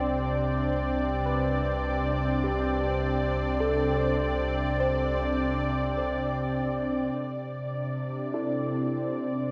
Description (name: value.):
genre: ambient.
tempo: 51 BPM.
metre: 3/4.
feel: straight.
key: unclear.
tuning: A4 = 440 Hz.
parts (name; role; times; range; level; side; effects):
warm analog pad; sustained chords; 0.0-9.5 s; C3 to G5; -29 LUFS; equal; chorus.
warm sub bass; bass; 0.0-7.1 s; C2; -36 LUFS; equal; none.
soft round pluck; arpeggios; 1.3-9.5 s; E4 to C5; -35 LUFS; equal; subtle chorus, tape echo.
room: wet lush hall reverb, RT60 2.6 s.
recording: dreamy mix soaked in reverb.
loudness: -28 LUFS.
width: mono.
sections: 0.0-7.2 A section; 7.2-9.5 B section.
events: fade-in on synth pluck 0.0-7.2; fade-in on sub bass 0.0-7.2.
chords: 0.0 Csus2; 7.2 C.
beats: | 0.10 1.28 2.46 | 3.63 4.81 5.99 | 7.16 8.34 9.51.